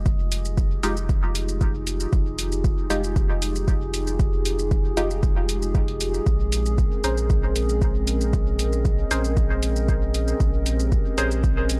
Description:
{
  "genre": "dub techno",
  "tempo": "116 BPM",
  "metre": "4/4",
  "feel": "straight",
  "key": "F minor",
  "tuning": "A4 = 441 Hz",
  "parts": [
    { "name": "dark analog pad", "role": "sustained chords", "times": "0.3-11.8 s", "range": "C4 to Bb4", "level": "-32 LUFS", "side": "equal", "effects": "chorus, sidechain pumping" },
    { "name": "warm sub bass", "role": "bass", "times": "0.0-11.8 s", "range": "F1 to Bb1", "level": "-28 LUFS", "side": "equal", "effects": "sidechain pumping" },
    { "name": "drifting glass-harmonics texture", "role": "texture", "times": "0.0-11.8 s", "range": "Ab3", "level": "-37 LUFS", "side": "equal", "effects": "chorus, built-in reverb, sidechain pumping" },
    { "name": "electronic kick drum", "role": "drums", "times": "0.1-11.5 s", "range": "none", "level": "-25 LUFS", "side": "equal", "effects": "overdrive" },
    { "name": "electronic shaker and hi-hat", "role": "drums", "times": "0.1-11.8 s", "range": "none", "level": "-34 LUFS", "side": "equal", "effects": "overdrive" },
    { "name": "filtered dub chord stab", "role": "stabs", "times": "0.8-11.3 s", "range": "Ab3 to C5", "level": "-31 LUFS", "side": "equal", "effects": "chorus, phaser, cassette tape, sidechain pumping, dub echo" }
  ],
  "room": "digital ambience",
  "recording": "dry, gritty hardware recording",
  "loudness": "-23 LUFS",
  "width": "mono",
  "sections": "0.0-11.8 A section",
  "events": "none",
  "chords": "0.0 Fm9; 6.3 Bbm9",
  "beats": "| 0.06 0.57 1.09 1.61 | 2.13 2.64 3.16 3.68 | 4.20 4.71 5.23 5.75 | 6.26 6.78 7.30 7.82 | 8.33 8.85 9.37 9.88 | 10.40 10.92 11.44"
}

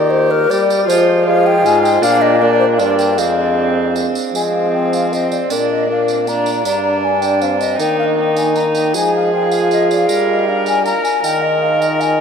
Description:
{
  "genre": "classical, renaissance-style consort dance",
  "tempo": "157 BPM",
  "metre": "3/4",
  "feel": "straight",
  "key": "F dorian",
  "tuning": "A4 = 439 Hz",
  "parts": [
    { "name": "mellow baroque flute", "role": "melody", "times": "0.0-12.2 s", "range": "Bb4 to Bb5", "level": "-17 LUFS", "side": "left 3 dB", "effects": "none" },
    { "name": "warm viola", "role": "second line", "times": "0.0-12.2 s", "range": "C4 to Bb4", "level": "-19 LUFS", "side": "right 3 dB", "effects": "none" },
    { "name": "mellow bassoon", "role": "accompaniment", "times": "0.0-12.2 s", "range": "Ab3 to F4", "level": "-18 LUFS", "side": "left 2 dB", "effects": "none" },
    { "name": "brilliant trombone", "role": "bass", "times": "0.0-12.2 s", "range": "F2 to G3", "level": "-21 LUFS", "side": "right 3 dB", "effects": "none" },
    { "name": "tambourine", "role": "percussion", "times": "0.5-12.2 s", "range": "none", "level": "-29 LUFS", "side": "right 6 dB", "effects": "none" }
  ],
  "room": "wet cathedral reverb, RT60 6.1 s",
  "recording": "in a vast, echoing space",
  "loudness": "-12 LUFS",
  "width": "side -6 dB against mid",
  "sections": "0.0-4.3 A section; 4.3-12.2 B section",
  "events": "none",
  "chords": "0.0 Eb; 0.9 Fm; 2.0 Bb; 3.2 Fm; 5.5 Bb; 6.6 Gm; 7.8 Eb5; 8.9 Fm; 10.1 Gm; 11.2 Eb5",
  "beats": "0.11 0.50 | 0.88 1.27 1.65 | 2.03 2.41 2.80 | 3.18 3.57 3.96 | 4.34 4.73 5.11 | 5.50 5.88 6.26 | 6.65 7.03 7.41 | 7.80 8.18 8.56 | 8.94 9.32 9.71 | 10.09 10.47 10.85 | 11.23 11.62 12.01"
}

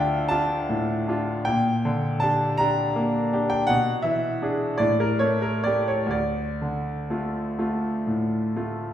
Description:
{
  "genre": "classical, romantic nocturne for solo piano",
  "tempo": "41-56 BPM (dotted quarters)",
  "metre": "6/8",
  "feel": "rubato",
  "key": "D minor",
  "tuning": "A4 = 440 Hz",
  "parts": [
    { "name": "bright concert grand piano", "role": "solo", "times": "0.0-8.9 s", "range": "D2 to Bb5", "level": "-22 LUFS", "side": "equal", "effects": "none" }
  ],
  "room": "wet recital hall reverb, RT60 1.6 s",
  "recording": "heard from further back in the room",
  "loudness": "-22 LUFS",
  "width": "side -10 dB against mid",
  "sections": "0.0-8.9 A section",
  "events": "none",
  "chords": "0.0 Dm; 1.5 Gm/Bb; 3.7 E7/B; 4.8 A7b9; 6.1 Dm",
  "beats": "0.29 | 1.45 2.59 | 3.69 4.81 | 6.14 7.60"
}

